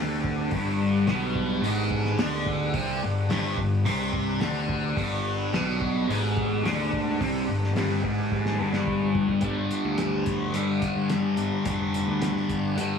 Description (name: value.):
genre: psychedelic rock.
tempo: 108 BPM.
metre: 4/4.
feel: straight.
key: G major.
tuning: A4 = 444 Hz.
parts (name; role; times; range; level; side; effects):
percussive tonewheel organ; sustained chords; 0.0-13.0 s; D4 to B4; -38 LUFS; right 2 dB; slow rotary speaker, chorus vibrato.
thick fuzz guitar; riff; 0.0-13.0 s; G2 to D4; -26 LUFS; left 1 dB; distortion, phaser, analog delay.
fuzz picked electric bass; bass; 0.0-13.0 s; F1 to G2; -30 LUFS; left 1 dB; overdrive.
cloth-damped thuddy drum kit; drums; 0.2-12.9 s; hi-hat, kick drum, snare drum; -32 LUFS; equal; analog delay.
room: light reverb, studio reverb.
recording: echo-heavy mix, small room ambience.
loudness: -23 LUFS.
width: side -6 dB against mid.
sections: 0.0-9.4 A section; 9.4-13.0 B section.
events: drum fill 8.3-9.4.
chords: 0.0 G.